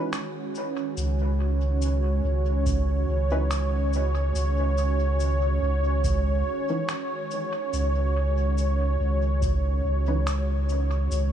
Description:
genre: ambient dub.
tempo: 71 BPM.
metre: 4/4.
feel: swing 56% on 16ths.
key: unclear.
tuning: A4 = 440 Hz.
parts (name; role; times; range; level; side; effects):
warm analog pad; sustained chords; 0.0-11.3 s; D#3 to C#5; -28 LUFS; right 2 dB; chorus.
filtered dub chord stab; stabs; 0.0-10.3 s; E3 to B4; -36 LUFS; equal; chorus, cassette tape, dub echo.
electronic finger snaps and cabasa; drums; 0.1-11.3 s; none; -38 LUFS; equal; studio reverb, dub echo.
warm sub bass; bass; 1.0-11.3 s; C#2; -24 LUFS; equal; none.
electronic kick drum; drums; 2.7-9.6 s; none; -28 LUFS; equal; studio reverb.
room: light reverb.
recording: studio ambience.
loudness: -23 LUFS.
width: side -10 dB against mid.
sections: 0.0-11.3 A section.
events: none.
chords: 0.0 C#m9.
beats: 0.13 | 0.97 1.82 2.66 3.51 | 4.35 5.20 6.04 6.89 | 7.73 8.58 9.42 10.27 | 11.11.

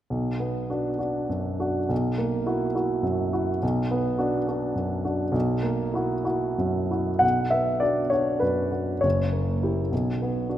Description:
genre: classical, romantic character piece for solo piano.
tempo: 60-72 BPM (dotted quarters).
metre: 6/8.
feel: rubato.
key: B minor.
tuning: A4 = 440 Hz.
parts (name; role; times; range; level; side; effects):
warm grand piano; solo; 0.1-10.6 s; F#1 to F#5; -23 LUFS; equal; none.
room: moderate concert hall reverb, RT60 1.9 s.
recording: none.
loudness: -23 LUFS.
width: side -12 dB against mid.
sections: 0.1-7.2 A section; 7.2-10.6 B section.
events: none.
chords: 0.1 Bm; 1.9 F#7/B; 3.6 Bm; 5.3 F#7/B; 7.2 Bm; 9.0 F#7b9; 9.9 Bm.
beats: | 0.10 1.01 | 1.91 2.77 | 3.62 4.48 | 5.34 6.26 | 7.23 8.13 | 9.04 9.91.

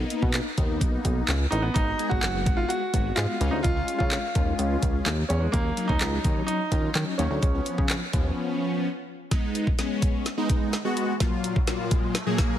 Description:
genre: dance-pop.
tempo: 127 BPM.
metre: 4/4.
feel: straight.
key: G# dorian.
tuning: A4 = 440 Hz.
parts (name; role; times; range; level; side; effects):
big bright polysynth; accompaniment; 0.0-12.6 s; A#2 to G#4; -29 LUFS; left 2 dB; chorus, sidechain pumping.
chorused synth bass; bass; 0.0-8.3 s; F#1 to D#3; -27 LUFS; equal; sidechain pumping.
smooth R&B drum kit; drums; 0.1-12.5 s; handclaps, hi-hat, kick drum, snare drum; -26 LUFS; equal; none.
clear baby grand piano; melody; 1.5-8.8 s; G#3 to F#4; -29 LUFS; right 2 dB; tape echo.
riser; sound effects; 10.3-12.6 s; none; -40 LUFS; right 1 dB; none.
room: light reverb.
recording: heavily compressed radio sound, lossy compression artefacts.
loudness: -23 LUFS.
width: side -11 dB against mid.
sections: 0.0-9.3 A section; 9.3-12.6 B section.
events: break 8.4-9.3; build-up 9.3-12.6; drum fill 9.3-12.6; riser 10.3-12.6.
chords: 0.0 Bmaj7; 1.8 G#m7; 3.4 C#; 5.5 D#m7; 7.4 C#7; 9.3 G#m; 11.2 F#maj7/A#.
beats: 0.34 0.81 1.28 | 1.76 2.23 2.70 3.17 | 3.65 4.12 4.59 5.06 | 5.54 6.01 6.48 6.95 | 7.42 7.90 8.37 8.84 | 9.31 9.79 10.26 10.73 | 11.21 11.68 12.15.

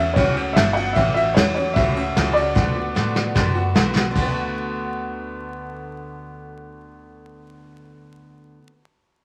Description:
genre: rockabilly.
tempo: 150 BPM.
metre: 4/4.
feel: straight.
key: D major.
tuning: A4 = 443 Hz.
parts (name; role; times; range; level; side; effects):
warm upright piano; melody; 0.0-3.7 s; C#5 to F#5; -24 LUFS; equal; none.
picked steel-string acoustic guitar; accompaniment; 0.0-8.7 s; A2 to F#4; -29 LUFS; equal; none.
upright bass; bass; 0.0-8.6 s; G1 to A2; -29 LUFS; equal; none.
soft brush drum kit; drums; 0.2-4.3 s; crash cymbal, kick drum, ride cymbal, snare drum; -23 LUFS; equal; none.
room: wet large studio reverb, RT60 0.9 s.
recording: vinyl crackle.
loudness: -20 LUFS.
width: mono.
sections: 0.0-4.2 A section; 4.2-7.4 B section.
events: drum fill 2.6-4.2.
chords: 0.0 A6; 2.6 D6.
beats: 0.16 0.56 | 0.96 1.36 1.76 2.16 | 2.56 2.96 3.36 3.76 | 4.16 4.56 4.96 5.36 | 5.76 6.16 6.56 6.96.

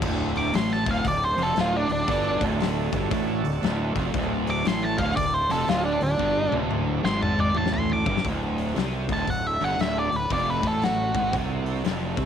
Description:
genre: blues rock power trio and southern rock.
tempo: 117 BPM.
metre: 4/4.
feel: swing 64% on 8ths.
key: D major.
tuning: A4 = 439 Hz.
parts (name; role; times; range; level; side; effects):
bright tonewheel organ; sustained chords; 0.0-12.3 s; A3 to A4; -36 LUFS; right 9 dB; slow rotary speaker.
distorted electric guitar; riff; 0.0-12.3 s; D2 to C3; -27 LUFS; equal; distortion.
fuzz fingered electric bass; bass; 0.0-12.3 s; D1 to C2; -30 LUFS; right 1 dB; overdrive.
big rock drum kit; drums; 0.0-12.3 s; crash cymbal, hi-hat, kick drum, snare drum, toms; -30 LUFS; left 4 dB; none.
octave-fuzz lead guitar; melody; 0.4-11.3 s; D4 to D6; -26 LUFS; right 1 dB; distortion.
room: light reverb, studio reverb.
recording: 1960s-style stereo.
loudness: -22 LUFS.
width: side -8 dB against mid.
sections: 0.0-8.2 A section; 8.2-12.3 B section.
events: lead electric guitar solo 0.0-8.2; drum fill 6.2-8.2.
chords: 0.0 D.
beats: | 0.03 0.54 1.05 1.57 | 2.08 2.60 3.11 3.63 | 4.14 4.66 5.17 5.68 | 6.20 6.71 7.22 7.74 | 8.25 8.76 9.28 9.79 | 10.30 10.82 11.33 11.85.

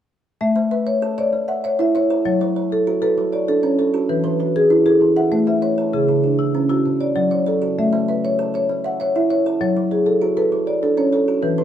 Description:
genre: southern african traditional, mbira-style interlocking cycle.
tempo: 131 BPM (dotted quarters).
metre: 12/8.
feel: straight.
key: A major.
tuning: A4 = 440 Hz.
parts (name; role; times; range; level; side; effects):
marimba with medium mallets; arpeggios; 0.4-11.6 s; C#3 to F#5; -18 LUFS; left 2 dB; none.
kalimba; arpeggios; 0.6-11.6 s; C#3 to F#5; -21 LUFS; right 4 dB; none.
room: wet small room reverb, RT60 0.5 s.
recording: heard from further back in the room.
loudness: -16 LUFS.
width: side -10 dB against mid.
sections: 0.4-11.6 A section.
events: none.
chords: 0.4 A; 2.3 F#m; 4.1 E; 5.0 A; 5.9 C#m; 6.9 F#m; 7.8 A; 9.6 F#m.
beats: | 0.41 0.87 1.33 1.79 | 2.25 2.71 3.17 3.63 | 4.09 4.55 5.01 5.47 | 5.93 6.39 6.85 7.31 | 7.77 8.23 8.69 9.15 | 9.60 10.06 10.52 10.98 | 11.44.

